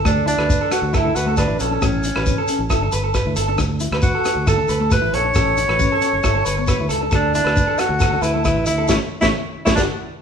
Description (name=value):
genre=highlife guitar band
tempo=136 BPM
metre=4/4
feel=straight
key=D major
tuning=A4 = 440 Hz
part: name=mellow electric guitar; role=accompaniment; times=0.0-9.8 s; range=A3 to G4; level=-27 LUFS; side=left 5 dB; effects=none
part: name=electric guitar at the edge of break-up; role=arpeggios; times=0.0-9.8 s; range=F#4 to C#5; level=-23 LUFS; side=right 2 dB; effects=none
part: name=warm alto saxophone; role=melody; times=0.1-9.8 s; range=C#4 to C#5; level=-21 LUFS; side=equal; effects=none
part: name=fingered electric bass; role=bass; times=0.1-9.9 s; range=F#1 to D2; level=-24 LUFS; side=equal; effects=none
part: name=vintage drum kit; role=drums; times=0.1-9.9 s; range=hi-hat, kick drum, rim click, snare drum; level=-22 LUFS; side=equal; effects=none
part: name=shekere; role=percussion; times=0.1-9.9 s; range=none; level=-26 LUFS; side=equal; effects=none
room=moderate large studio reverb, RT60 1.2 s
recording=band playing live in one room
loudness=-16 LUFS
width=side -7 dB against mid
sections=0.0-10.2 A section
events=band accent 8.9-10.2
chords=0.1 D5; 1.8 A; 2.7 G; 3.6 D; 5.4 A; 6.2 G; 7.1 D; 8.9 A7; 9.8 N.C.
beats=| 0.05 0.49 0.94 1.38 | 1.82 2.26 2.70 3.15 | 3.59 4.03 4.47 4.91 | 5.35 5.79 6.24 6.68 | 7.12 7.56 8.01 8.45 | 8.89 9.33 9.77